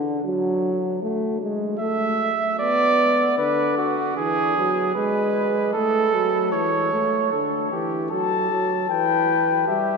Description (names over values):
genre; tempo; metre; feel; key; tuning
classical, imitative canzona for brass ensemble; 76 BPM; 4/4; straight; D major; A4 = 440 Hz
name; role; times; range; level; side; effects
mellow trombone; accompaniment; 0.0-10.0 s; D3 to B3; -24 LUFS; equal; none
mellow trumpet; second line; 1.8-10.0 s; F#4 to E5; -21 LUFS; right 3 dB; none
dark trumpet; melody; 8.1-10.0 s; E5 to A5; -21 LUFS; left 9 dB; none
room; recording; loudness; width
wet cathedral reverb, RT60 7.3 s; minimal, uncompressed stereo recording; -19 LUFS; side -4 dB against mid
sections
0.0-7.3 A section; 7.3-10.0 B section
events
none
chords
0.0 N.C.; 1.0 A5; 2.6 Bm; 4.2 E; 5.7 A; 7.3 D; 8.9 Em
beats
0.24 | 1.02 1.80 2.59 3.38 | 4.17 4.96 5.74 6.53 | 7.32 8.11 8.90 9.68